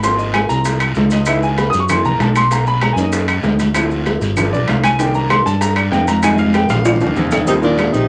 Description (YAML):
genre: Afro-Cuban jazz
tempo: 194 BPM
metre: 4/4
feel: straight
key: Eb major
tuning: A4 = 439 Hz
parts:
  - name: dark baby grand piano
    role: accompaniment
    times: 0.0-8.0 s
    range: Eb3 to Eb6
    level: -21 LUFS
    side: equal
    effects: none
  - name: modern bright fingered electric bass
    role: bass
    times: 0.0-8.1 s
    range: G1 to G2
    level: -21 LUFS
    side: equal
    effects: none
  - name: bongos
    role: percussion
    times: 0.0-8.1 s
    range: none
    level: -26 LUFS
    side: equal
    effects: none
  - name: congas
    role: percussion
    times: 0.0-8.1 s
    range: none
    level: -23 LUFS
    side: equal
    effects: none
  - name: guiro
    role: percussion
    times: 0.0-8.1 s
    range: none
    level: -33 LUFS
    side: equal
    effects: none
  - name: maracas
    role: percussion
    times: 0.0-8.1 s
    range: none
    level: -36 LUFS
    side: equal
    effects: none
  - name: timbales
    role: percussion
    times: 0.0-7.9 s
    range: none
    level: -24 LUFS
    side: equal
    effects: none
  - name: claves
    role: percussion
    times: 0.3-7.9 s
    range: none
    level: -25 LUFS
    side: equal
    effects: none
  - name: breathy tenor saxophone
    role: melody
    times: 7.5-8.1 s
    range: D4 to Eb4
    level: -21 LUFS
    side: equal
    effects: none
  - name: breathy baritone saxophone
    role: second line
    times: 7.5-8.1 s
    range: Bb2 to C3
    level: -20 LUFS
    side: equal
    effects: none
room: wet studio ambience, RT60 0.5 s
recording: none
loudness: -15 LUFS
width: mono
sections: 0.0-7.5 A section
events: grand piano solo 0.0-7.5; drum fill 6.2-7.5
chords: 0.0 Ab6; 1.3 Dbm7; 1.9 Gb7; 2.5 Bmaj7; 3.8 Dm7; 4.4 G7; 5.0 Cm7; 6.2 Fm7; 6.9 Bb7; 7.5 Eb69